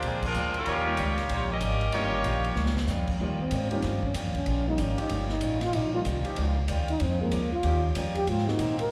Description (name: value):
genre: jazz, big band swing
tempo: 189 BPM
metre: 4/4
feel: swing 63% on 8ths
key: Eb mixolydian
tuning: A4 = 445 Hz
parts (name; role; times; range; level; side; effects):
- bright saxophone section; melody; 0.0-2.4 s; F3 to Eb5; -33 LUFS; equal; slapback echo
- picked swing-style acoustic guitar; accompaniment; 0.0-8.8 s; Ab2 to F4; -39 LUFS; equal; slapback echo
- clear trumpet section; stabs; 0.0-2.8 s; D4 to Db5; -32 LUFS; equal; slapback echo
- upright bass; bass; 0.0-8.9 s; G1 to Bb2; -31 LUFS; equal; none
- swinging big-band drum kit; drums; 0.0-8.8 s; crash cymbal, hi-hat, kick drum, ride cymbal, snare drum; -39 LUFS; equal; none
- warm baby grand piano; accompaniment; 0.9-8.6 s; Eb3 to Ab4; -37 LUFS; equal; slapback echo
- breathy trombone; melody; 3.4-8.9 s; Bb3 to Bb4; -32 LUFS; equal; slapback echo
- warm trombone section; sustained chords; 3.7-8.1 s; F3 to G4; -39 LUFS; equal; none
room: light reverb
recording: live gig heard through the venue's PA, recital hall reverb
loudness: -28 LUFS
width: mono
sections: 0.0-3.2 A section; 3.2-8.9 B section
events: band accent 0.2; drum fill 2.6-2.9; trombone solo 3.2-8.9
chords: 0.0 Bb9; 0.7 Eb9; 7.0 Bbm7; 7.6 Eb9; 8.3 Ab9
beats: 0.03 0.35 | 0.67 0.98 1.30 1.61 | 1.93 2.25 2.56 2.88 | 3.20 3.52 3.83 4.15 | 4.47 4.79 5.10 5.42 | 5.74 6.05 6.37 6.69 | 7.01 7.33 7.64 7.96 | 8.28 8.60